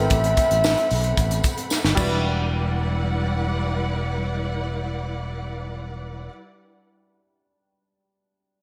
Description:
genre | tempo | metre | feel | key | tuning
polished 1980s jazz-funk pop | 113 BPM | 4/4 | straight | E minor | A4 = 436 Hz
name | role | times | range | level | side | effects
breathy flugelhorn | melody | 0.0-1.7 s | E5 | -24 LUFS | equal | none
clear baby grand piano | accompaniment | 0.0-8.6 s | G3 to B4 | -32 LUFS | equal | analog chorus
warm studio string section | sustained chords | 0.0-6.3 s | G3 to B5 | -32 LUFS | equal | none
sustaining fretless electric bass | bass | 0.0-6.3 s | E1 to B1 | -27 LUFS | equal | none
crisp fusion drum kit | drums | 0.1-2.1 s | crash cymbal, hi-hat, kick drum, snare drum | -27 LUFS | equal | gated reverb
tambourine | percussion | 0.1-2.5 s | none | -37 LUFS | equal | none
room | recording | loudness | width
light reverb, studio reverb | bright 1980s-style digital production | -23 LUFS | mono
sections
0.0-2.2 A section; 2.2-6.5 B section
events
drum fill 1.7-2.2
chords
0.0 Am9; 2.0 Em9

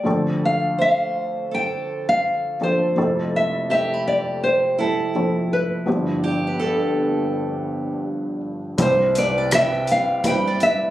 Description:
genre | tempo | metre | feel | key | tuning
acoustic folk-pop ballad | 83 BPM | 4/4 | straight | C major | A4 = 440 Hz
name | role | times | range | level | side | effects
nylon-string guitar | melody | 0.0-10.9 s | A4 to G5 | -20 LUFS | equal | none
felt-muted upright piano | accompaniment | 0.0-10.9 s | F1 to C5 | -23 LUFS | equal | none
picked steel-string acoustic guitar | arpeggios | 0.0-10.9 s | E4 to B5 | -27 LUFS | right 2 dB | none
upright bass | bass | 8.8-9.9 s | C2 | -31 LUFS | right 1 dB | none
soft-mallet drum kit | drums | 8.8-10.8 s | hi-hat, kick drum, rim click | -26 LUFS | equal | none
room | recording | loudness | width
light reverb | recorded on a phone in the room, club reverb | -18 LUFS | side -14 dB against mid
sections
0.0-8.8 A section; 8.8-10.9 B section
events
none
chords
0.1 Dm7; 3.0 Fmaj7; 5.9 G7; 8.8 Cmaj7

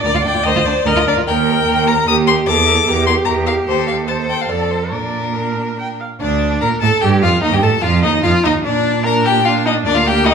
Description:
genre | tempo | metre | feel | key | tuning
quick classical-period movement for string quartet | 148 BPM | 3/4 | rubato | Bb major | A4 = 440 Hz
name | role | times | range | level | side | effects
warm violin | melody | 0.0-10.3 s | Bb4 to Eb6 | -17 LUFS | left 7 dB | none
rich viola | accompaniment | 0.0-10.3 s | Bb3 to G5 | -19 LUFS | right 3 dB | none
warm cello | bass | 0.0-10.3 s | D2 to Bb2 | -18 LUFS | right 5 dB | none
rich violin | second line | 0.1-10.3 s | D4 to Bb4 | -21 LUFS | left 3 dB | none
room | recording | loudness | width
moderate recital hall reverb, RT60 1.5 s | minimal, uncompressed stereo recording | -13 LUFS | side -6 dB against mid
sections
0.0-6.2 A section; 6.2-10.3 A section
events
none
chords
0.1 Bb/D; 1.3 Eb; 2.5 Em7b5; 3.7 F9/Eb (rootless); 4.5 F; 4.9 Bb; 6.2 Bb/D; 7.4 F7/Eb; 8.6 Bb

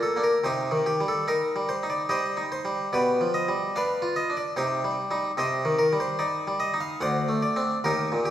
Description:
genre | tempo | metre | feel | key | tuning
classical, baroque-style suite movement for harpsichord | 73 BPM | 3/4 | rubato | unclear | A4 = 440 Hz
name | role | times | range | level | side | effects
harpsichord | solo | 0.0-8.3 s | D2 to F#5 | -23 LUFS | equal | none
room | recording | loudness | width
wet recital hall reverb, RT60 1.8 s | heard from further back in the room | -23 LUFS | side -11 dB against mid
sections
0.0-8.3 A section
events
none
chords
0.4 Cm; 2.9 G7/B; 4.6 Cm; 7.0 D7

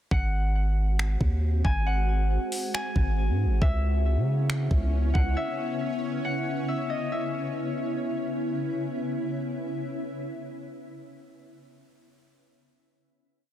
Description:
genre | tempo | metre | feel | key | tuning
hip hop, atmospheric cloud-rap | 137 BPM | 4/4 | half-time | C# minor | A4 = 440 Hz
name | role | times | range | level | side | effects
Celtic harp | melody | 0.1-8.8 s | D#5 to G#5 | -34 LUFS | left 3 dB | low-pass filter, digital delay
shimmering ambient pad | sustained chords | 0.8-10.4 s | C#3 to F#4 | -31 LUFS | equal | chorus, built-in reverb
long sustained 808-style bass | bass | 0.1-5.4 s | G#1 to C#3 | -24 LUFS | equal | none
smooth R&B drum kit | drums | 0.1-5.3 s | finger snaps, hi-hat, kick drum | -26 LUFS | equal | soft clipping on snare
room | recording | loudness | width
little or no reverb | dense, heavily limited modern master | -25 LUFS | side -12 dB against mid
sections
0.1-7.1 verse; 7.1-10.6 final chord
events
none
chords
0.1 G#7; 3.6 C#m7

